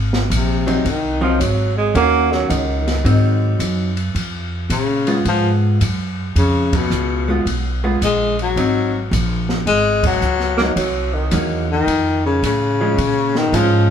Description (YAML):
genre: jazz, small-group swing and bop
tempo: 109 BPM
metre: 4/4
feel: swing 67% on 8ths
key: Ab mixolydian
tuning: A4 = 440 Hz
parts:
  - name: upright bass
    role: bass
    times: 0.0-13.9 s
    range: Ab1 to Bb2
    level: -19 LUFS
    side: equal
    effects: none
  - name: open jazz drum kit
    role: drums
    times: 0.1-13.7 s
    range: hi-hat, kick drum, ride cymbal, snare drum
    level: -25 LUFS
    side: equal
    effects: none
  - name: warm baritone saxophone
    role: melody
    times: 0.3-1.2, 4.7-13.9 s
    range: Cb3 to Ab3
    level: -18 LUFS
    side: left 3 dB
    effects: none
  - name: vintage hollow-body jazz guitar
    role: accompaniment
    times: 0.7-13.9 s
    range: Eb3 to Gb4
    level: -21 LUFS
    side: equal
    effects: none
  - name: breathy tenor saxophone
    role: second line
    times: 1.2-3.6, 10.6-11.5 s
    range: Eb3 to Bb3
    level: -20 LUFS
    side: right 5 dB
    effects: none
room: moderate large studio reverb, RT60 1.1 s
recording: band playing live in one room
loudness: -15 LUFS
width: side -8 dB against mid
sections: 0.0-13.9 A section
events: band accent 6.6, 9.9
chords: 0.0 Ab7; 2.0 Ebm7; 3.1 Ab7; 4.2 Db7; 8.6 Ab7; 10.8 Cm7b5; 11.9 Faug; 13.0 Bbm7